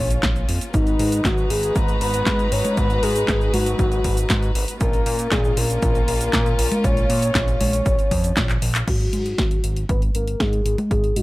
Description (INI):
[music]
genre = italo disco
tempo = 118 BPM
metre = 4/4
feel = straight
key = G# dorian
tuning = A4 = 440 Hz
[part]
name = soft octave-layered synth lead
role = melody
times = 0.0-11.2 s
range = D#4 to C#5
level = -24 LUFS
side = left 1 dB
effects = chorus, tremolo
[part]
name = dark chamber string section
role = sustained chords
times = 0.0-8.8 s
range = G#3 to A#5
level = -28 LUFS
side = left 1 dB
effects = none
[part]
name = fat analog bass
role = bass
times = 0.0-11.2 s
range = G#1 to A#2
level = -24 LUFS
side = equal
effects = none
[part]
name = house drum kit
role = drums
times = 0.1-11.2 s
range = cabasa, congas, crash cymbal, handclaps, hi-hat, snare drum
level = -25 LUFS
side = equal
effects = small room reverb
[part]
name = electronic kick drum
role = drums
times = 0.2-11.0 s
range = none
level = -22 LUFS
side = equal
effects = small room reverb
[sound]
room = little or no reverb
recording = none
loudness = -18 LUFS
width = side -18 dB against mid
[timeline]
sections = 0.0-8.9 A section; 8.9-11.2 B section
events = drum fill 8.5-8.9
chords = 0.0 A#m; 0.7 G#m7; 4.8 A#m; 8.9 G#7sus2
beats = 0.23 | 0.74 1.25 1.76 2.27 | 2.77 3.28 3.79 4.30 | 4.81 5.32 5.83 6.33 | 6.84 7.35 7.86 8.37 | 8.88 9.38 9.89 10.40 | 10.91